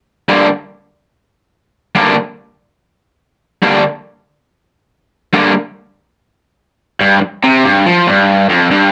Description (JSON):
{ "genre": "rock", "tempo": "142 BPM", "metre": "4/4", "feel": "straight", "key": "G minor", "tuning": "A4 = 441 Hz", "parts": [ { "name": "raw garage guitar", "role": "solo", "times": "0.3-8.9 s", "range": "F2 to D4", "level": "-11 LUFS", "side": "equal", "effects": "overdrive" } ], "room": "moderate club reverb, RT60 0.7 s", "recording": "none", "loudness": "-12 LUFS", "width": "mono", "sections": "0.0-7.0 A section; 7.0-8.9 B section", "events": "none", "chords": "0.0 Gm; 7.0 N.C." }